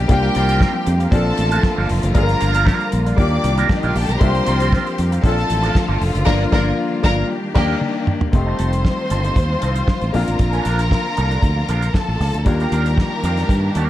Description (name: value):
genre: disco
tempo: 116 BPM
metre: 4/4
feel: straight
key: unclear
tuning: A4 = 440 Hz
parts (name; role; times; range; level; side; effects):
- clear grand piano; accompaniment; 0.0-13.9 s; G3 to G5; -25 LUFS; left 4 dB; none
- clear studio string section; sustained chords; 0.0-13.9 s; D3 to G4; -24 LUFS; left 1 dB; none
- fingered electric bass; bass; 0.0-13.9 s; F1 to G2; -19 LUFS; equal; none
- rich studio violin section; second line; 0.1-13.9 s; D4 to D6; -24 LUFS; left 1 dB; none
- electric guitar with an envelope filter; accompaniment; 0.1-13.9 s; F3 to Bb4; -26 LUFS; right 7 dB; wah
- damped 70s drum kit; drums; 0.1-13.9 s; crash cymbal, hi-hat, kick drum, snare drum, toms; -19 LUFS; equal; none
room: studio reverb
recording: dark, warm production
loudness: -15 LUFS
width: side -13 dB against mid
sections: 0.0-8.3 A section; 8.3-13.9 B section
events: band accent 6.3-8.3; drum fill 7.8-8.3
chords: 0.1 C7sus4; 1.1 Bbmaj7; 2.2 Gm7; 3.2 Ebmaj7; 4.2 C7sus4; 5.2 Bbmaj7; 6.3 Gm7; 7.3 Ebmaj7; 8.3 F9; 10.1 Bbmaj7; 12.5 Ebmaj7